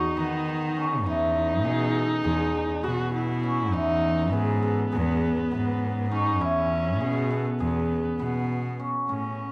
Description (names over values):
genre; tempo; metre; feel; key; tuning
contemporary instrumental, chamber music in an uneven meter; 202 BPM (eighths); 9/8; straight; unclear; A4 = 440 Hz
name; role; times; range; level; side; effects
warm viola; second line; 0.0-9.5 s; B3 to F#4; -32 LUFS; equal; none
cimbalom; arpeggios; 0.0-9.5 s; E3 to A4; -31 LUFS; equal; none
rich cello; bass; 0.0-9.5 s; E2 to D#3; -30 LUFS; equal; none
room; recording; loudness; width
moderate scoring stage reverb, RT60 1.7 s; none; -26 LUFS; mono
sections
0.0-9.1 A section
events
none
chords
0.0 G#m7; 1.1 C#m9/E